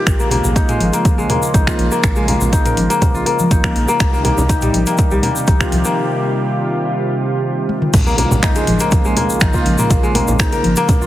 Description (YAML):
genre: afro house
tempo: 122 BPM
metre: 4/4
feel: straight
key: Bb dorian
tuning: A4 = 444 Hz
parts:
  - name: warm analog pad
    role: sustained chords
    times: 0.0-11.1 s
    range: C3 to G4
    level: -20 LUFS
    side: right 1 dB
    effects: wide subtle chorus, sidechain pumping
  - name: kora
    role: arpeggios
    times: 0.0-11.1 s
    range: G3 to Bb4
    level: -19 LUFS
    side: left 2 dB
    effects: sidechain pumping, digital delay
  - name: round analog bass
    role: bass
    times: 0.1-11.1 s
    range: Ab1 to C2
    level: -20 LUFS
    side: equal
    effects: sidechain pumping
  - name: afro-pop drum kit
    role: drums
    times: 0.1-11.0 s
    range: crash cymbal, finger snaps, hi-hat, toms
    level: -21 LUFS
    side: equal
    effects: none
  - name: electronic kick drum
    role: drums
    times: 0.1-11.0 s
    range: none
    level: -15 LUFS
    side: equal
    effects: overdrive
  - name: egg shaker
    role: percussion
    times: 0.1-11.1 s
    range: none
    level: -28 LUFS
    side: left 2 dB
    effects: none
  - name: congas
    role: percussion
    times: 0.3-11.0 s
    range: none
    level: -21 LUFS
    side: left 1 dB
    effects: none
  - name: impact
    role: sound effects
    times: 7.9-9.9 s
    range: none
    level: -26 LUFS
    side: equal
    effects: none
room: light reverb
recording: heavily compressed radio sound, multiband compression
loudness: -13 LUFS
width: side -14 dB against mid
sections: 0.0-7.9 A section; 7.9-11.1 B section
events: break 6.0-7.9; drum fill 7.7; drop 7.9-11.1; impact 7.9-9.9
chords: 0.1 Bbm7; 4.0 Cm; 7.9 Bbm7